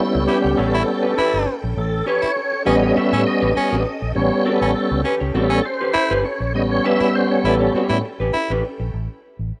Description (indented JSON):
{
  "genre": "funk",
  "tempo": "101 BPM",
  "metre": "4/4",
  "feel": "straight",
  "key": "A mixolydian",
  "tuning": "A4 = 440 Hz",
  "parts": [
    { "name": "vintage hollow-body jazz guitar", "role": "accompaniment", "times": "0.0-8.8 s", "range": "C#4 to C#5", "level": "-26 LUFS", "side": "equal", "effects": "none" },
    { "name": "string machine, violins", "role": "sustained chords", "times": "0.0-8.9 s", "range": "C#4 to G5", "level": "-34 LUFS", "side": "equal", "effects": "ensemble chorus" },
    { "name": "tonewheel organ", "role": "stabs", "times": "0.0-8.0 s", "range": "G3 to E5", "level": "-21 LUFS", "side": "equal", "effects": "overdrive, chorus vibrato, slow rotary speaker, slapback echo" },
    { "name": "vintage muted fingered electric bass", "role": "bass", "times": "0.1-9.5 s", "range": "G1 to A2", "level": "-26 LUFS", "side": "equal", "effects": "none" },
    { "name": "growling baritone saxophone", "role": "second line", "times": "0.3-8.5 s", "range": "C#4 to E4", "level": "-26 LUFS", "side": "equal", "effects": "none" }
  ],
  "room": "light reverb, digital ambience",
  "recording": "rough home demo mix",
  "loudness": "-19 LUFS",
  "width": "mono",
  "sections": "0.0-8.9 A section",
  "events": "tonewheel organ solo 0.0-8.9",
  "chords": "0.0 A9; 8.9 N.C."
}